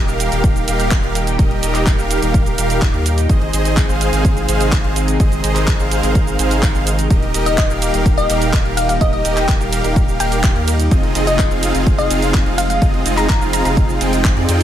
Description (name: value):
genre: EDM, festival progressive house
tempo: 126 BPM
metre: 4/4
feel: straight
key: Eb major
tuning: A4 = 440 Hz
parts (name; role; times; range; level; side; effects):
- lush unison pad; sustained chords; 0.0-14.6 s; Bb2 to Bb4; -23 LUFS; equal; chorus, sidechain pumping
- supersaw chords; riff; 0.0-14.6 s; C4 to G5; -21 LUFS; right 1 dB; sidechain pumping, digital delay
- saturated sub bass; bass; 0.0-14.6 s; Eb1 to F2; -20 LUFS; equal; sidechain pumping
- house drum kit; drums; 0.1-14.6 s; handclaps, hi-hat, ride cymbal, shaker; -24 LUFS; right 2 dB; none
- electronic kick drum; drums; 0.4-14.3 s; none; -15 LUFS; equal; none
- glassy wavetable pluck; melody; 7.5-13.7 s; Eb5 to Bb5; -22 LUFS; left 2 dB; chorus, digital delay
room: light reverb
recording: none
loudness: -13 LUFS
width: side -11 dB against mid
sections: 0.0-14.6 A section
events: none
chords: 0.0 Eb; 3.3 Ab; 7.1 Eb; 10.9 Fm7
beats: 0.44 0.91 | 1.39 1.87 2.34 2.82 | 3.29 3.77 4.25 4.72 | 5.20 5.68 6.15 6.63 | 7.11 7.58 8.06 8.53 | 9.01 9.49 9.96 10.44 | 10.91 11.39 11.87 12.34 | 12.82 13.29 13.77 14.25